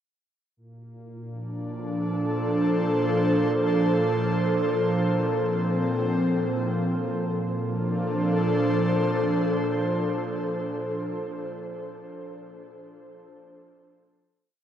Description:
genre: ambient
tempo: 54 BPM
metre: 3/4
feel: straight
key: Bb major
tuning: A4 = 439 Hz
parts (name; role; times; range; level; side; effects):
- airy breathy pad; solo; 0.6-11.3 s; Bb2 to C5; -24 LUFS; equal; chorus, tape echo
room: wet huge ambient reverb, RT60 7.7 s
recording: worn, warbling old tape, cassette tape, warbly pitch drift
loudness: -23 LUFS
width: side -10 dB against mid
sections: 0.6-7.2 A section; 7.2-10.6 final chord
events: none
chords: 0.6 Bbmaj7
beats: | 0.56 1.67 2.78 | 3.89 5.00 6.11 | 7.22 8.33 9.44

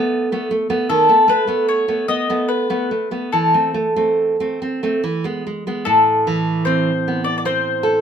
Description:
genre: romantic duo for mandolin and classical guitar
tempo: 70-79 BPM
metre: 3/4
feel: rubato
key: A minor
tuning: A4 = 439 Hz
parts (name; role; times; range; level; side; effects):
- mandolin; melody; 0.0-8.0 s; A4 to D#5; -17 LUFS; left 2 dB; none
- nylon-string guitar; accompaniment; 0.0-8.0 s; A2 to A4; -18 LUFS; right 2 dB; none
room: light reverb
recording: band playing live in one room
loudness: -16 LUFS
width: side -8 dB against mid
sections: 0.0-5.9 A section; 5.9-8.0 B section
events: none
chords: 0.0 D5; 0.9 B7(no3); 3.3 Am/E; 5.0 E; 5.9 Am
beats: 0.13 | 0.90 1.70 2.51 | 3.33 4.19 5.03 | 5.87 6.66 7.44

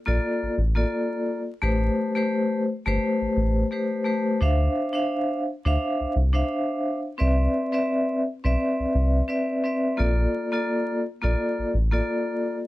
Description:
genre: hip hop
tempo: 86 BPM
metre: 4/4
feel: swing 56% on 16ths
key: unclear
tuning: A4 = 441 Hz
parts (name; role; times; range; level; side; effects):
- vibraphone with medium hard mallets; accompaniment; 0.1-12.6 s; A3 to F5; -24 LUFS; left 1 dB; high-pass filter, low-pass filter
- round analog bass; bass; 0.1-12.0 s; G1 to D2; -22 LUFS; equal; none
room: little or no reverb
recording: vinyl crackle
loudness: -22 LUFS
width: side -16 dB against mid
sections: 0.0-12.7 A section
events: none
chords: 0.0 Bbmaj7; 1.6 Am9; 4.4 Dm9; 7.2 Cmaj9; 10.0 Bbmaj7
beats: 0.22 0.92 | 1.62 2.31 3.01 3.71 | 4.41 5.11 5.80 6.50 | 7.20 7.90 8.59 9.29 | 9.99 10.69 11.38 12.08

